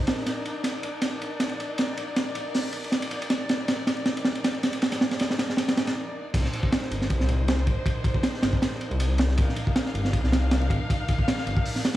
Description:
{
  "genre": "drum and bass, jungle",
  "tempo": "158 BPM",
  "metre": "4/4",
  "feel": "swing 54% on 16ths",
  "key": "C minor",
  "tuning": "A4 = 442 Hz",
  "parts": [
    { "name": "dark chamber string section", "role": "sustained chords", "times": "0.0-12.0 s", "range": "D4 to F5", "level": "-33 LUFS", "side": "left 1 dB", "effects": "none" },
    { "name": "crunchy breakbeat drum kit", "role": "drums", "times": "0.1-12.0 s", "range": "crash cymbal, hi-hat, kick drum, ride cymbal, snare drum", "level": "-25 LUFS", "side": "right 1 dB", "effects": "none" },
    { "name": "detuned saw bass", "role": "bass", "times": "6.3-11.6 s", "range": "G1 to C2", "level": "-24 LUFS", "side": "equal", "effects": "none" }
  ],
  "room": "light reverb, small room reverb",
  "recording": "vinyl crackle, studio reverb",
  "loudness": "-23 LUFS",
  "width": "side -14 dB against mid",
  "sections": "0.0-6.3 A section; 6.3-12.0 B section",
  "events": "build-up 0.0-6.3; drum fill 0.3-6.0; break 6.0-6.3; drop 6.3-12.0",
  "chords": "0.0 Cm9 (rootless); 6.3 Cm9"
}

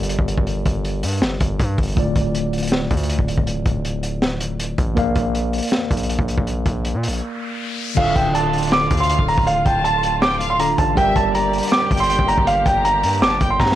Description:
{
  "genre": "hip hop, trap",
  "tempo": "160 BPM",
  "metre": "4/4",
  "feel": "half-time",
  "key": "D minor",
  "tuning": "A4 = 440 Hz",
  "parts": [
    { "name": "mellow tine electric piano", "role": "accompaniment", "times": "0.0-13.8 s", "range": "D3 to F5", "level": "-24 LUFS", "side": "equal", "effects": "medium stereo tremolo" },
    { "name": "distorted 808-style bass", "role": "bass", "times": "0.0-13.8 s", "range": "D1 to Bb2", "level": "-24 LUFS", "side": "equal", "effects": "distortion" },
    { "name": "crunchy breakbeat drum kit", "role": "drums", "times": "0.0-13.8 s", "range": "crash cymbal, hi-hat, kick drum, snare drum", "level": "-21 LUFS", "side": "equal", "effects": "none" },
    { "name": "riser", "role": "sound effects", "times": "6.9-8.0 s", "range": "none", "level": "-31 LUFS", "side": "left 3 dB", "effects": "none" },
    { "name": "dark grand piano", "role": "melody", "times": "8.0-13.7 s", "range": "F5 to D6", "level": "-18 LUFS", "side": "right 2 dB", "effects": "analog delay" },
    { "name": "warm chamber violin section", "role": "second line", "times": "8.0-13.6 s", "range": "D5 to Bb5", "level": "-27 LUFS", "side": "left 2 dB", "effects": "analog delay" },
    { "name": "muted studio string section", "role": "sustained chords", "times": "8.0-13.8 s", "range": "D3 to G4", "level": "-29 LUFS", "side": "left 1 dB", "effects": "none" }
  ],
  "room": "little or no reverb",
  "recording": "dry, gritty hardware recording",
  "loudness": "-16 LUFS",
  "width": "side -13 dB against mid",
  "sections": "0.0-8.0 A section; 8.0-13.8 B section",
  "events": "riser 6.9-8.0; break 7.2-8.0; drum fill 13.6",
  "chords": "0.0 Gm; 2.0 Dm; 5.0 Bb; 8.0 Dm; 11.0 Gm"
}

